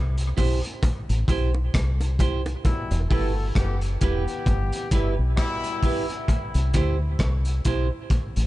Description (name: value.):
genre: dub reggae.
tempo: 66 BPM.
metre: 4/4.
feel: swing 58% on 16ths.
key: unclear.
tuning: A4 = 439 Hz.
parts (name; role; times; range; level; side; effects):
deep dub fingered electric bass; bass; 0.0-8.5 s; E1 to D2; -23 LUFS; equal; none.
crunchy breakbeat drum kit; drums; 0.2-8.5 s; hi-hat, kick drum, rim click; -25 LUFS; equal; none.
clean electric guitar; accompaniment; 0.4-7.9 s; E4 to C5; -31 LUFS; right 6 dB; dub echo.
bongos; percussion; 0.4-2.9 s; none; -40 LUFS; right 4 dB; none.
warm horn section; second line; 2.6-6.0 s; B2 to A4; -32 LUFS; left 2 dB; dub echo.
room: small room ambience.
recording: dark, warm production, nothing above 10.3 kHz.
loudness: -21 LUFS.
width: side -17 dB against mid.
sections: 0.0-8.5 A section.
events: part muted 2.6-8.5.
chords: 0.0 C; 2.6 Em; 6.3 C.